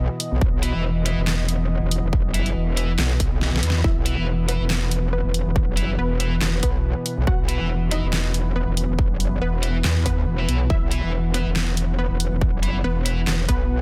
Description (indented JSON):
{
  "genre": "heavy wobble dubstep",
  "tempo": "140 BPM",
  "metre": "4/4",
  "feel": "swing 54% on 16ths, half-time",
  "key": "unclear",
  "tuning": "A4 = 441 Hz",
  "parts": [
    { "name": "supersaw pad", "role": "sustained chords", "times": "0.0-13.8 s", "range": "B2 to F#5", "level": "-33 LUFS", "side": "equal", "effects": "sidechain pumping, low-pass filter" },
    { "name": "metallic wobble bass", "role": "bass", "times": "0.0-13.8 s", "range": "E1 to E2", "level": "-24 LUFS", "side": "equal", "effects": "chorus, overdrive" },
    { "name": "dubstep drum kit", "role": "drums", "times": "0.2-13.6 s", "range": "handclaps, hi-hat, snare drum", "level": "-28 LUFS", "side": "equal", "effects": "overdrive" },
    { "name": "electronic kick drum", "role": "drums", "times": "0.4-13.6 s", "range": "none", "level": "-24 LUFS", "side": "equal", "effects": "overdrive" },
    { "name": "tight distorted guitar", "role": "stabs", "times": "0.6-13.2 s", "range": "E4 to E5", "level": "-36 LUFS", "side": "equal", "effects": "distortion, dub echo" },
    { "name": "unison pluck", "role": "melody", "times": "3.8-13.8 s", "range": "B3 to F#5", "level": "-34 LUFS", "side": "equal", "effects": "dub echo" }
  ],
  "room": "little or no reverb",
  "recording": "dense, heavily limited modern master",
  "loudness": "-22 LUFS",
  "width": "mono",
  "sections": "0.0-13.8 A section",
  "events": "kick drops out 3.4-3.8; drum fill 3.4-3.8",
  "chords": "0.0 E5",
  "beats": "| 0.41 0.84 1.27 1.70 | 2.13 2.56 2.99 3.41 | 3.84 4.27 4.70 5.13 | 5.56 5.99 6.41 6.84 | 7.27 7.70 8.13 8.56 | 8.99 9.41 9.84 10.27 | 10.70 11.13 11.56 11.99 | 12.41 12.84 13.27 13.70"
}